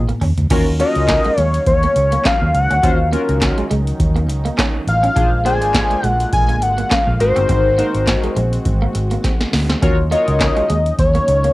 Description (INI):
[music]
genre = early-eighties boogie funk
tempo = 103 BPM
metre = 4/4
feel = swing 56% on 16ths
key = Eb dorian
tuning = A4 = 440 Hz
[part]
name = chorused polysynth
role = accompaniment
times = 0.0-10.6 s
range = Db4 to Db5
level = -21 LUFS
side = left 2 dB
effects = none
[part]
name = vintage muted fingered electric bass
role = bass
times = 0.0-11.5 s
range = G1 to Eb2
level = -18 LUFS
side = equal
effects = none
[part]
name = clean electric guitar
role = riff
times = 0.1-11.5 s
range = Ab3 to D4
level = -25 LUFS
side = right 3 dB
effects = analog chorus
[part]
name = booming analog drum machine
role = drums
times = 0.1-11.5 s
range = crash cymbal, handclaps, hi-hat, kick drum, snare drum, toms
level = -18 LUFS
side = equal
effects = cassette tape
[part]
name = brassy analog pad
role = sustained chords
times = 0.5-11.5 s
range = D3 to F5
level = -28 LUFS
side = right 1 dB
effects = chorus
[part]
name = fat analog lead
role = melody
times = 0.8-11.5 s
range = C5 to Ab5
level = -17 LUFS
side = left 1 dB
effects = none
[sound]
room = light reverb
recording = home recording on cassette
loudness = -13 LUFS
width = side -18 dB against mid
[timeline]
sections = 0.5-11.5 A section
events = drum fill 0.0-0.5, 9.2-9.8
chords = 0.0 Bbsus4; 0.5 Ebm9; 5.2 Bb7; 7.2 Ab7; 9.8 Ebm9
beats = | 0.50 1.09 1.67 2.25 | 2.83 3.42 4.00 4.58 | 5.16 5.75 6.33 6.91 | 7.49 8.08 8.66 9.24 | 9.82 10.41 10.99